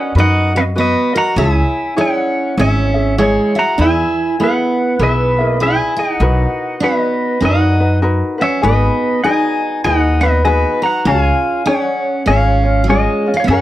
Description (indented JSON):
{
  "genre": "Hawaiian",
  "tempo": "99 BPM",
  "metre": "4/4",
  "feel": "swing 62% on 8ths",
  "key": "unclear",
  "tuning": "A4 = 440 Hz",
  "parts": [
    { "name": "pedal steel guitar", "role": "melody", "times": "0.0-13.6 s", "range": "G#4 to A#5", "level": "-17 LUFS", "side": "equal", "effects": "none" },
    { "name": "picked steel-string acoustic guitar", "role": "second line", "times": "0.0-13.6 s", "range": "G#3 to F#4", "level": "-19 LUFS", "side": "right 3 dB", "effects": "none" },
    { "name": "ukulele", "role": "accompaniment", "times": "0.0-13.6 s", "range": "C#4 to E5", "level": "-19 LUFS", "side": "left 2 dB", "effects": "none" },
    { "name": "upright bass", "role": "bass", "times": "0.1-13.6 s", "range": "G#1 to F#2", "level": "-15 LUFS", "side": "equal", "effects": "none" }
  ],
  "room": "moderate small room reverb, RT60 0.5 s",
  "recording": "none",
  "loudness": "-12 LUFS",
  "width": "side -14 dB against mid",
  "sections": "0.0-13.6 A section",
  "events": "none",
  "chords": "0.0 Bmaj7; 1.4 C#m; 3.8 E; 6.2 Bmaj7; 8.6 G#m7; 11.0 C#"
}